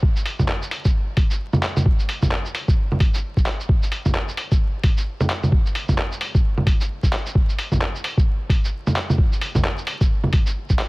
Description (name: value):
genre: future garage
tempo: 131 BPM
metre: 4/4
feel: swing 60% on 16ths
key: none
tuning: none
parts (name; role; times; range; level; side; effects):
- electronic kick drum; drums; 0.0-10.8 s; none; -19 LUFS; equal; none
- lo-fi sampler-style drum kit; drums; 0.2-10.9 s; bongos, handclaps, hi-hat, shaker; -23 LUFS; equal; none
room: little or no reverb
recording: dense, heavily limited modern master, vinyl crackle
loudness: -18 LUFS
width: side -24 dB against mid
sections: 0.0-10.9 A section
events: none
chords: none